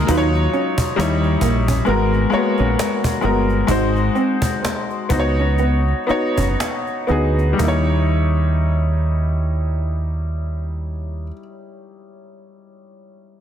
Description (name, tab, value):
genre	R&B, neo-soul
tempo	58-68 BPM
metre	4/4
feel	swing 60% on 16ths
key	Eb minor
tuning	A4 = 440 Hz
part	clear grand piano	accompaniment	0.0-13.4 s	Gb3 to Db5	-20 LUFS	left 2 dB	none
part	electric guitar through a small old amp	second line	0.1-7.9 s	Bb3 to Eb4	-25 LUFS	right 4 dB	none
part	deep dub fingered electric bass	bass	0.1-11.3 s	Gb1 to Eb2	-19 LUFS	right 1 dB	none
part	cajon	drums	0.1-7.9 s	none	-24 LUFS	equal	none
room	light reverb, small room ambience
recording	dense, heavily limited modern master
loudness	-16 LUFS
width	side -9 dB against mid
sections	0.1-7.6 A section; 7.6-11.7 B section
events	slowing down 0.1-7.6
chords	0.1 Ebm9; 1.0 Eb7b9; 1.9 Abm9; 3.7 Ab7; 5.1 Db9sus4; 7.6 Eb7b9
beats	| 0.08 0.97 1.86 2.76 | 3.68 4.62 5.58 6.57 | 7.59 8.63 9.67 10.71